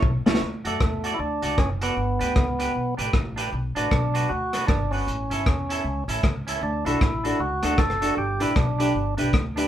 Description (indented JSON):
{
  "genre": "ska",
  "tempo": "155 BPM",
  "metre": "4/4",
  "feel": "swing 61% on 8ths",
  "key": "D major",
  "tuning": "A4 = 440 Hz",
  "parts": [
    { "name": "upright bass", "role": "bass", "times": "0.0-9.7 s", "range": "F#1 to F#2", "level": "-29 LUFS", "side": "equal", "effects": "none" },
    { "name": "crunchy breakbeat drum kit", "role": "drums", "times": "0.0-9.6 s", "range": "hi-hat, kick drum, rim click, snare drum", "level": "-24 LUFS", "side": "equal", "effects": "none" },
    { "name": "clean electric guitar", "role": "accompaniment", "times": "0.3-9.7 s", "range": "C#4 to D5", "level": "-30 LUFS", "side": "right 3 dB", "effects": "none" },
    { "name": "dark upright piano", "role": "stabs", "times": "0.3-0.4, 6.9-9.7 s", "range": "C#4 to D5", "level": "-27 LUFS", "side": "equal", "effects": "none" },
    { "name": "percussive tonewheel organ", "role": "melody", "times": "0.7-9.1 s", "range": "A3 to A4", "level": "-27 LUFS", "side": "right 1 dB", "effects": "overdrive" }
  ],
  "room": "moderate small room reverb, RT60 0.5 s",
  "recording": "band playing live in one room",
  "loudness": "-21 LUFS",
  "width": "side -11 dB against mid",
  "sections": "0.4-9.7 A section",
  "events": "drum fill 0.0-0.4",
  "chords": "0.4 D; 2.0 G; 3.5 Bm; 5.1 A; 6.6 D; 8.2 G"
}